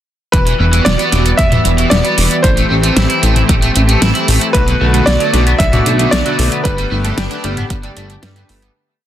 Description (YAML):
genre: synthwave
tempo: 114 BPM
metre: 4/4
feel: straight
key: E minor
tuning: A4 = 439 Hz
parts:
  - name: warm electric grand piano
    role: melody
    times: 0.3-8.2 s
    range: B4 to E5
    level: -19 LUFS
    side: equal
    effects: digital delay
  - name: soft synth bell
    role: second line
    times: 0.3-8.2 s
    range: B4 to E5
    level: -25 LUFS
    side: equal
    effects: none
  - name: brassy analog pad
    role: sustained chords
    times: 0.3-8.7 s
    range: D3 to G4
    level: -19 LUFS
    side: left 1 dB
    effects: chorus, sidechain pumping
  - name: raw garage guitar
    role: riff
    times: 0.3-8.7 s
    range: B2 to G4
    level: -20 LUFS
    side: right 1 dB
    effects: overdrive, wide subtle chorus, tape echo
  - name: chorused synth bass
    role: bass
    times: 0.3-8.7 s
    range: E1 to G2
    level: -15 LUFS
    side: equal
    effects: sidechain pumping
  - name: electronic kick drum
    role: drums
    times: 0.3-7.8 s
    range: none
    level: -15 LUFS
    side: equal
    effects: overdrive
  - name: pop drum kit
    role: drums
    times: 0.3-8.7 s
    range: hi-hat, snare drum, toms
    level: -17 LUFS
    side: equal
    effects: overdrive
  - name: clean electric guitar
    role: arpeggios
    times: 4.5-8.7 s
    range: D3 to B3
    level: -24 LUFS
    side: left 2 dB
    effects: wide subtle chorus, tape echo
  - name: chorused polysynth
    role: stabs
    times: 4.5-8.7 s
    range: G2 to D5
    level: -23 LUFS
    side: right 3 dB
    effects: none
room: light reverb, digital ambience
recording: dense, heavily limited modern master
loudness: -10 LUFS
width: side -11 dB against mid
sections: 0.3-8.8 chorus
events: fade-out 5.9-8.8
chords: 0.3 Emadd9; 2.4 Am7; 4.5 Bm7; 6.7 Gadd9